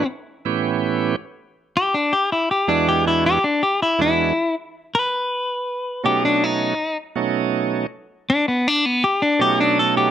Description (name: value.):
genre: blues.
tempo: 107 BPM.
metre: 4/4.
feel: swing 68% on 8ths.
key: unclear.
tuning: A4 = 440 Hz.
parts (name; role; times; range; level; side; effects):
clean electric guitar; melody; 0.0-10.1 s; B3 to B4; -18 LUFS; left 2 dB; none.
bright tonewheel organ; accompaniment; 0.0-10.1 s; E2 to G4; -21 LUFS; right 7 dB; slow rotary speaker, overdrive.
room: light reverb.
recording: none.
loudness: -18 LUFS.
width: side -10 dB against mid.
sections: 0.0-10.1 A section.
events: clean electric guitar solo 0.0-10.1.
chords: 0.0 A7; 1.8 E7; 6.2 B7.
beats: 0.07 0.63 1.19 | 1.75 2.31 2.87 3.43 | 3.99 4.55 5.11 5.66 | 6.22 6.78 7.34 7.90 | 8.46 9.02 9.58.